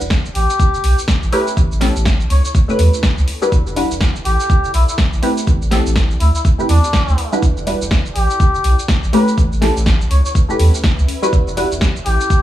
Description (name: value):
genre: deep house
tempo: 123 BPM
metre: 4/4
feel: swing 59% on 16ths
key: E minor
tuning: A4 = 438 Hz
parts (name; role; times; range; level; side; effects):
- filtered dub chord stab; stabs; 0.0-11.7 s; G3 to B4; -18 LUFS; equal; phaser, analog chorus, sidechain pumping, analog delay
- warm sub bass; bass; 0.0-12.2 s; E1 to E2; -15 LUFS; equal; sidechain pumping
- deep house drum kit; drums; 0.0-12.4 s; hi-hat, shaker, snare drum; -23 LUFS; equal; none
- granular cloud pad; texture; 0.0-12.4 s; B3 to G5; -33 LUFS; right 1 dB; built-in reverb, sidechain pumping
- electronic kick drum; drums; 0.1-12.4 s; none; -15 LUFS; equal; none
- trumpet with cup mute; melody; 0.4-12.4 s; D4 to C#5; -21 LUFS; left 1 dB; vintage 12-bit sampler grit, analog delay
room: little or no reverb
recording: vinyl crackle, small room ambience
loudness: -13 LUFS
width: side -13 dB against mid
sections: 0.0-12.4 A section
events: fade-in on ambient pad 0.0-12.4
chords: 0.0 Em7; 1.6 A9; 3.3 Em9; 5.5 Am9; 7.4 Em9; 9.4 A9; 11.1 Em9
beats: 0.11 0.59 1.08 | 1.57 2.06 2.55 3.03 | 3.52 4.01 4.50 4.99 | 5.47 5.96 6.45 6.94 | 7.42 7.91 8.40 8.89 | 9.38 9.86 10.35 10.84 | 11.33 11.81 12.30